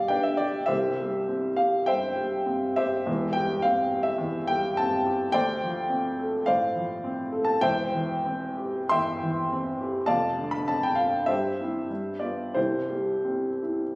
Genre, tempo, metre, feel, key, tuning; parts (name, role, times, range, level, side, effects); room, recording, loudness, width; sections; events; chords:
classical, romantic character piece for solo piano; 84-109 BPM; 4/4; rubato; C major; A4 = 440 Hz
clear upright piano; solo; 0.0-14.0 s; E1 to C6; -24 LUFS; equal
wet recital hall reverb, RT60 1.5 s; recorded on a phone in the room, club reverb; -24 LUFS; side -22 dB against mid
0.0-14.0 A section
0.0 G/B; 0.7 C; 3.1 C/E; 5.4 Dm7; 7.6 C/E; 10.1 Dm7/F; 11.3 C/G; 11.9 G7; 12.6 C